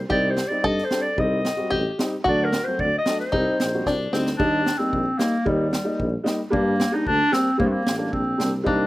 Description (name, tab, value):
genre	klezmer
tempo	112 BPM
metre	2/4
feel	straight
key	C dorian sharp4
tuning	A4 = 440 Hz
part	mellow tuba	bass	0.0-8.9 s	A1 to G2	-26 LUFS	equal	none
part	warm clarinet	melody	0.1-8.9 s	G3 to Eb5	-23 LUFS	equal	slapback echo
part	open-back banjo	second line	0.1-4.4, 8.7-8.9 s	Bb3 to A4	-27 LUFS	left 2 dB	slapback echo
part	dark upright piano	accompaniment	0.1-8.9 s	F#3 to F#4	-26 LUFS	equal	none
part	street-band drum kit	drums	0.1-8.8 s	kick drum, snare drum	-28 LUFS	right 1 dB	none
room	little or no reverb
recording	recorded outdoors, with no room sound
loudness	-20 LUFS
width	side -17 dB against mid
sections	0.0-4.4 A section; 4.4-8.9 A section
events	drum fill 3.9-4.4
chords	0.1 Cm; 2.3 D; 3.3 Cm; 4.4 Eb; 6.5 Gm